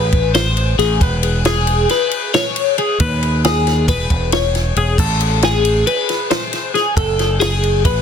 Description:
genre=math rock and midwest emo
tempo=272 BPM (eighths)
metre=9/8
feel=straight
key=E major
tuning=A4 = 440 Hz
part: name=twelve-string electric guitar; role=arpeggios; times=0.0-8.0 s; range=G#4 to C#5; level=-17 LUFS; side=left 3 dB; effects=phaser, digital delay
part: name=growling fingered electric bass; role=bass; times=0.0-8.0 s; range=E1 to D#2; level=-17 LUFS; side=right 1 dB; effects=overdrive
part: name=compact cocktail drum kit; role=drums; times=0.1-8.0 s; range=crash cymbal, kick drum, ride cymbal, snare drum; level=-19 LUFS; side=equal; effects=soft clipping on snare
room=light reverb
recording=dense, heavily limited modern master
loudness=-13 LUFS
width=side -7 dB against mid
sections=0.0-8.0 A section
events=none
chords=0.0 Am; 1.0 Emaj7; 5.0 Am6

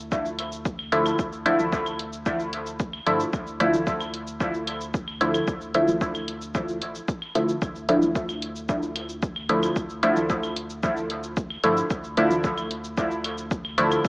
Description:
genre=dub techno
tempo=112 BPM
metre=4/4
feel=straight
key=D minor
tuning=A4 = 444 Hz
part: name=filtered dub chord stab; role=stabs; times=0.0-14.1 s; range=D3 to E4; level=-23 LUFS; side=equal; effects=chorus, phaser, sidechain pumping, dub echo
part: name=warm sub bass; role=bass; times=0.0-14.1 s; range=A1 to G2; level=-39 LUFS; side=equal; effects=sidechain pumping
part: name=electronic kick drum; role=drums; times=0.1-14.1 s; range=none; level=-28 LUFS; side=equal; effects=none
part: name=electronic shaker and hi-hat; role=drums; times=0.1-14.1 s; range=none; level=-37 LUFS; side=equal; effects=none
part: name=claves and congas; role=percussion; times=0.4-14.0 s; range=none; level=-35 LUFS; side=equal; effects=sidechain pumping on perc, dub echo
room=moderate echo chamber reverb, RT60 1.8 s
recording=AM radio sound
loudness=-23 LUFS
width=side -26 dB against mid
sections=0.0-14.1 A section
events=none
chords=0.0 Dmadd9

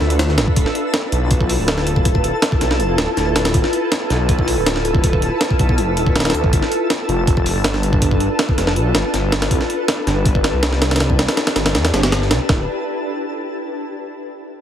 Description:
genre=drum and bass, jungle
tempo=161 BPM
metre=4/4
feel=straight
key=D dorian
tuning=A4 = 440 Hz
part: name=detuned saw bass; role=bass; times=0.0-12.7 s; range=D1 to E2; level=-19 LUFS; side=equal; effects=none
part: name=breakbeat sampler-style drum kit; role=drums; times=0.0-12.6 s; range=hi-hat, kick drum, snare drum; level=-17 LUFS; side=equal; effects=none
part: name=twinkling granular texture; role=texture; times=0.0-12.5 s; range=A4 to E6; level=-28 LUFS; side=equal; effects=built-in reverb
room=light reverb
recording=heavily compressed radio sound, multiband compression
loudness=-15 LUFS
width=side -9 dB against mid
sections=0.0-12.5 A section; 12.5-14.0 B section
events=drop 0.0-12.5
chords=0.0 G9; 0.6 Dm69; 6.5 G9; 9.5 Cmaj9; 12.5 Dm69

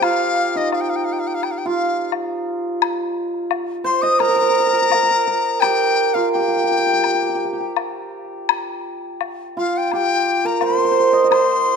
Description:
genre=chinese traditional, Chinese chamber ensemble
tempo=85 BPM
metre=4/4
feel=rubato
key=C yu mode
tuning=A4 = 438 Hz
part: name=dizi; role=melody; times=0.0-11.8 s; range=Eb5 to Eb6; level=-19 LUFS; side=left 5 dB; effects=none
part: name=hammered dulcimer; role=second line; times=0.0-11.8 s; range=Eb4 to Eb5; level=-19 LUFS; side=right 4 dB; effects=none
part: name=woodblock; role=percussion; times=0.0-11.5 s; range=none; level=-23 LUFS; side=left 12 dB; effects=none
room=light reverb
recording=close, detailed microphones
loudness=-16 LUFS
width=side -6 dB against mid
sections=0.0-11.8 A section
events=none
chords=none

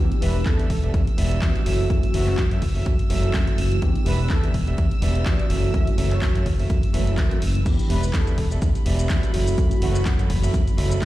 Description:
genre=filtered disco house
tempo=125 BPM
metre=4/4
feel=swing 55% on 16ths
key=unclear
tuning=A4 = 440 Hz
part: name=mellow tine electric piano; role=accompaniment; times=0.0-11.1 s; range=E3 to B4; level=-29 LUFS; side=equal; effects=medium stereo tremolo, phaser, sidechain pumping
part: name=bright chamber violin section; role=sustained chords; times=0.0-11.1 s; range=B5 to E6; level=-38 LUFS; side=right 1 dB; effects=vintage 12-bit sampler grit, sidechain pumping
part: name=modern bright fingered electric bass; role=bass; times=0.0-11.1 s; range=E1 to F#2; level=-23 LUFS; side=equal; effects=sidechain pumping
part: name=punchy analog drum machine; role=drums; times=0.1-11.1 s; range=crash cymbal, handclaps, hi-hat, shaker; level=-34 LUFS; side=equal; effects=sidechain pumping on hats, sidechain pumping on cymbals, sidechain pumping on perc
part: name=analog synth brass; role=melody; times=0.2-10.2 s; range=F#4 to E5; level=-32 LUFS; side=equal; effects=chorus, sidechain pumping, digital delay
part: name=mellow electric guitar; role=riff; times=0.2-11.1 s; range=F#4 to F#5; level=-32 LUFS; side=right 4 dB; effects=sidechain pumping
part: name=electronic kick drum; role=drums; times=0.5-11.1 s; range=none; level=-22 LUFS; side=equal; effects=none
room=little or no reverb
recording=played on a big sound system in a bare room, large studio reverb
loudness=-19 LUFS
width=side -16 dB against mid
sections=0.0-11.1 A section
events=none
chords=0.0 Em7; 1.7 F#m7; 3.8 Em7; 5.5 F#m7; 7.7 Em7; 9.3 F#m7

